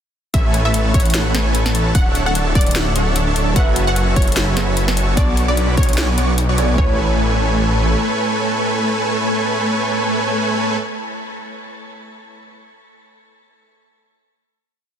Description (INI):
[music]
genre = future bass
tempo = 149 BPM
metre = 4/4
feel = swing 56% on 16ths, half-time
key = A major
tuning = A4 = 439 Hz
[part]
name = wide unison pluck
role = melody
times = 0.3-10.8 s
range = C#5 to F#5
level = -26 LUFS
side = right 1 dB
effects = sidechain pumping, ping-pong delay
[part]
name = dense compressed supersaw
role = riff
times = 0.3-10.8 s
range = A3 to C#6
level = -20 LUFS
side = right 1 dB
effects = vintage 12-bit sampler grit, sidechain pumping, ping-pong delay
[part]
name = wide detuned saw bass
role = bass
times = 0.3-8.0 s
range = D1 to B1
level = -18 LUFS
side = equal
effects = chorus, sidechain pumping
[part]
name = pop drum kit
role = drums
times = 0.3-6.9 s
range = kick drum, toms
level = -16 LUFS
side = equal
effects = none
[part]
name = trap drum kit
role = drums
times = 0.3-6.7 s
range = hi-hat, snare drum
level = -24 LUFS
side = left 1 dB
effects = none
[part]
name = glassy digital keys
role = accompaniment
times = 3.5-12.5 s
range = F#3 to C#6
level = -26 LUFS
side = right 2 dB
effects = chorus, sidechain pumping, ping-pong delay
[sound]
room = light reverb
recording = dense, heavily limited modern master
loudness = -14 LUFS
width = side -9 dB against mid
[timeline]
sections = 0.3-6.8 drop; 6.8-10.0 final chord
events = drop 0.3-6.8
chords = 0.3 Amaj7; 1.9 Dmaj9; 3.6 F#m11; 5.2 Bm9; 6.8 Amaj7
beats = | 0.34 0.74 1.14 1.55 | 1.95 2.35 2.75 3.16 | 3.56 3.96 4.37 4.77 | 5.17 5.57 5.98 6.38 | 6.78 7.18 7.59 7.99 | 8.39 8.79 9.20 9.60